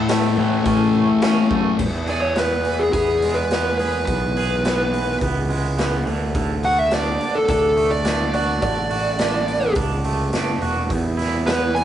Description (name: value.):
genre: quiet-loud alternative rock.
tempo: 105 BPM.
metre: 4/4.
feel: straight.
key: E mixolydian.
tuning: A4 = 439 Hz.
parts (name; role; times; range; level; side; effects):
twangy electric guitar; arpeggios; 0.0-11.8 s; E2 to A4; -25 LUFS; right 5 dB; harmonic tremolo.
thick fuzz guitar; riff; 0.0-1.8 s; A2 to A3; -18 LUFS; left 7 dB; distortion.
fuzz fingered electric bass; bass; 0.0-11.8 s; E1 to A2; -24 LUFS; equal; overdrive.
raw garage drum kit; drums; 0.1-11.8 s; crash cymbal, hi-hat, kick drum, snare drum; -25 LUFS; equal; none.
fuzz lead guitar; melody; 2.1-11.8 s; G#4 to G#5; -20 LUFS; equal; distortion, slapback echo.
room: moderate studio reverb, RT60 0.6 s.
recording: rough rehearsal-room recording, nothing above 10.9 kHz.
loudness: -17 LUFS.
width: side -10 dB against mid.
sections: 0.0-1.8 A section; 1.8-11.8 B section.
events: none.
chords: 0.0 A; 1.8 E; 6.1 D; 10.9 E5.